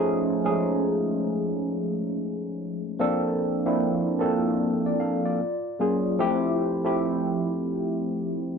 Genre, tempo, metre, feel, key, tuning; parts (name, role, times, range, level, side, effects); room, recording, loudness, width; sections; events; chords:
R&B; 75 BPM; 4/4; swing 64% on 16ths; F major; A4 = 440 Hz
barky tine electric piano; solo; 0.0-8.6 s; F3 to F5; -23 LUFS; equal; overdrive, phaser
moderate small room reverb, RT60 0.5 s; band playing live in one room; -23 LUFS; side -6 dB against mid
0.0-8.6 A section
0.0 F7alt; 3.0 Bbmaj9; 5.4 Gbmaj7; 6.2 Fmaj7